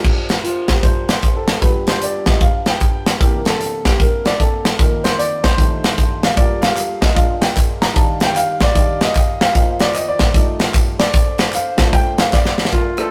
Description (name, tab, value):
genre	uptempo gospel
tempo	151 BPM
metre	4/4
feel	swing 64% on 8ths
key	Bb major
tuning	A4 = 440 Hz
part	warm upright piano	accompaniment	0.0-13.1 s	Bb1 to Bb5	-22 LUFS	equal	none
part	modern studio drum kit	drums	0.0-13.0 s	crash cymbal, hi-hat, kick drum, rim click, snare drum	-17 LUFS	equal	none
part	warm French horn section	sustained chords	0.1-12.7 s	Eb3 to F5	-32 LUFS	equal	none
part	tambourine and handclaps	percussion	6.4-12.7 s	none	-35 LUFS	equal	none
part	breathy alto saxophone	melody	12.7-13.1 s	F4 to A4	-23 LUFS	equal	none
room	light reverb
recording	rough rehearsal-room recording, tube saturation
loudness	-16 LUFS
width	mono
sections	0.0-12.7 A section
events	upright piano solo 0.0-12.7; drum fill 12.3-12.7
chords	0.0 Bb69; 1.6 G7; 3.2 C9; 4.8 F7sus4; 5.6 F13; 6.4 Gm9; 7.2 Bb7; 8.0 Ebmaj9; 9.6 F7sus4; 10.3 F13; 11.1 Bbmaj9